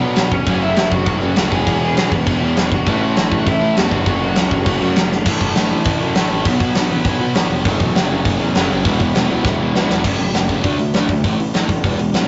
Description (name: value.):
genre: punk rock.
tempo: 201 BPM.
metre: 4/4.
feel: straight.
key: F# minor.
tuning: A4 = 437 Hz.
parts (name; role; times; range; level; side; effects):
overdriven semi-hollow guitar; riff; 0.0-12.3 s; E2 to D4; -25 LUFS; equal; none.
overdriven semi-hollow guitar; riff; 0.0-5.1, 7.7-12.3 s; F#2 to F#4; -25 LUFS; equal; none.
overdriven semi-hollow guitar; riff; 0.0-10.0 s; E2 to B3; -27 LUFS; equal; none.
fuzz picked electric bass; bass; 0.0-12.3 s; E1 to B2; -24 LUFS; equal; overdrive.
big rock drum kit; drums; 0.2-12.2 s; crash cymbal, hi-hat, kick drum, snare drum; -20 LUFS; equal; none.
lead guitar through a small cranked amp; melody; 0.3-4.9 s; C#4 to G#5; -25 LUFS; equal; overdrive.
room: light reverb.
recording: rough rehearsal-room recording, warm saturation, nothing above 7.9 kHz.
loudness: -17 LUFS.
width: mono.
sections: 0.0-5.3 A section; 5.3-10.0 B section; 10.0-12.3 C section.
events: drum fill 5.1, 9.4-10.0.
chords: 0.5 F#m; 1.5 E; 2.9 A; 3.9 F#m; 5.3 A5; 6.5 B5; 7.7 F#m; 8.8 E; 10.0 F#m; 10.6 D5; 11.2 A5.